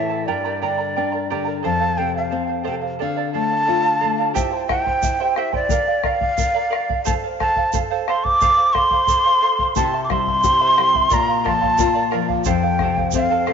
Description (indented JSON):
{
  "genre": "andean folk, Andean ensemble",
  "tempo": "89 BPM",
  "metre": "2/4",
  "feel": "straight",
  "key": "unclear",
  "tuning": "A4 = 439 Hz",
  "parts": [
    { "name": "breathy large quena", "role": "melody", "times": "0.0-13.5 s", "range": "D5 to D6", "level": "-18 LUFS", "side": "equal", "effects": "none" },
    { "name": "charango", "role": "accompaniment", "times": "0.0-13.5 s", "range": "E4 to C6", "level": "-24 LUFS", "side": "right 11 dB", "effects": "none" },
    { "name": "nylon-string guitar", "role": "accompaniment", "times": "0.0-4.4, 9.8-13.5 s", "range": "F2 to G4", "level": "-24 LUFS", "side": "left 11 dB", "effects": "none" },
    { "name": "bombo", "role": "percussion", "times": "4.4-13.5 s", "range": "none", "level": "-26 LUFS", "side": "left 4 dB", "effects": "none" },
    { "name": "tube shaker", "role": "percussion", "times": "4.4-13.3 s", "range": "none", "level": "-33 LUFS", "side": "right 15 dB", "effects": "none" }
  ],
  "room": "wet plate reverb, RT60 3.3 s",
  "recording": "1960s-style stereo with parts hard left and right, nothing above 7.5 kHz",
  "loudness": "-16 LUFS",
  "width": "side -7 dB against mid",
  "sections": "0.0-4.4 A section; 4.4-13.5 B section",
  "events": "none",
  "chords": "0.3 Gm; 1.7 F; 3.0 Dm; 4.4 C; 5.7 Bb; 7.1 F; 9.8 C; 11.1 Bb; 12.5 F"
}